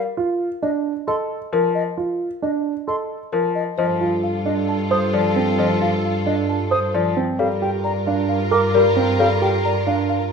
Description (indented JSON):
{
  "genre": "classical, minimalist pattern music",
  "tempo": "133 BPM",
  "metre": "4/4",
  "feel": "straight",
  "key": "unclear",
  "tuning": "A4 = 438 Hz",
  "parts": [
    { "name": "mellow hollow silver concert flute", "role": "arpeggios", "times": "0.0-10.0 s", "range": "Eb5 to Eb6", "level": "-26 LUFS", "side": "left 2 dB", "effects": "none" },
    { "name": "dark grand piano", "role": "arpeggios", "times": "0.2-10.2 s", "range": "C4 to C5", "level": "-23 LUFS", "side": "right 6 dB", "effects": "none" },
    { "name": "folk marimba with soft mallets", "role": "melody", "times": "0.6-10.3 s", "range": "A4 to A5", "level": "-24 LUFS", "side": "left 6 dB", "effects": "none" },
    { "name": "bright baby grand piano", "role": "accompaniment", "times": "1.5-9.5 s", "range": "F3 to G3", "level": "-25 LUFS", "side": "left 4 dB", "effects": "none" },
    { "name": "dark clarinet", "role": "second line", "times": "3.8-10.3 s", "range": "A4 to Bb4", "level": "-28 LUFS", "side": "right 8 dB", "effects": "none" },
    { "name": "rich studio violin section", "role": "sustained chords", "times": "3.8-10.3 s", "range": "F4 to Bb4", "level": "-28 LUFS", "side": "left 1 dB", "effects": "none" },
    { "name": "warm studio double bass section", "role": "bass", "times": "3.8-10.3 s", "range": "G2", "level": "-24 LUFS", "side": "left 1 dB", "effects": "none" }
  ],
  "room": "moderate large studio reverb, RT60 1.2 s",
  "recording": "none",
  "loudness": "-18 LUFS",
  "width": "side -5 dB against mid",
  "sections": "0.0-3.8 A section; 3.8-10.3 B section",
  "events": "none",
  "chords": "0.2 N.C.; 3.8 F7/G; 7.4 Gm9"
}